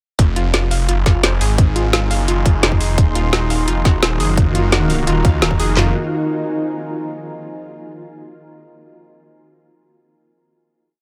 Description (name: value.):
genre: dark technical drum and bass.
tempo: 172 BPM.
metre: 4/4.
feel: straight.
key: F phrygian.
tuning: A4 = 440 Hz.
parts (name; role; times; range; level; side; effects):
snarling distorted saw bass; bass; 0.2-5.9 s; Eb1 to Db2; -20 LUFS; equal; distortion, overdrive, sidechain pumping.
drum and bass drum kit; drums; 0.2-5.9 s; handclaps, kick drum, snare drum, toms; -16 LUFS; equal; none.
drum and bass drum kit; drums; 0.2-5.7 s; hi-hat, snare drum; -22 LUFS; equal; none.
deep dark ambient pad; texture; 1.0-7.1 s; Eb4 to C6; -27 LUFS; equal; chorus, built-in reverb, sidechain pumping.
analog pluck; arpeggios; 0.4-5.9 s; F4 to F5; -27 LUFS; equal; chorus, sidechain pumping, tape echo.
swarming drone; sustained chords; 3.8-5.9 s; Eb3 to Gb4; -27 LUFS; equal; built-in reverb, sidechain pumping.
room: light reverb, digital ambience.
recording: none.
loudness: -16 LUFS.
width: mono.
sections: 0.2-5.8 drop; 5.8-7.2 final chord.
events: drop 0.2-5.8.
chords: 0.2 Fm7; 3.0 Ebm; 5.8 Fm7.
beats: | 0.19 0.54 0.89 1.24 | 1.58 1.93 2.28 2.63 | 2.98 3.33 3.68 4.03 | 4.37 4.72 5.07 5.42 | 5.77 6.12 6.47 6.82.